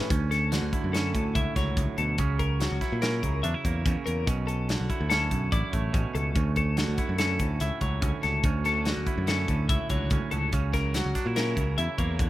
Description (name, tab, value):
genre	math rock and midwest emo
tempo	144 BPM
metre	5/4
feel	straight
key	D major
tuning	A4 = 442 Hz
part	twangy electric guitar	accompaniment	0.0-12.3 s	D2 to E4	-32 LUFS	right 5 dB	none
part	twelve-string electric guitar	arpeggios	0.0-12.3 s	F#4 to E5	-32 LUFS	left 4 dB	wide subtle chorus
part	overdriven electric guitar	riff	0.0-0.1, 8.6-12.3 s	C#3 to E4	-42 LUFS	left 1 dB	none
part	picked electric bass	bass	0.1-12.3 s	A1 to A#2	-28 LUFS	equal	none
part	modern studio drum kit	drums	0.1-12.3 s	hi-hat, kick drum, snare drum	-30 LUFS	equal	none
room	small room ambience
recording	rough home demo mix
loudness	-24 LUFS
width	side -15 dB against mid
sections	0.1-12.3 A section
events	none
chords	0.1 Dmaj9; 2.2 F#7/C#; 4.3 Bm9; 6.4 Dmaj9; 10.5 F#7/C#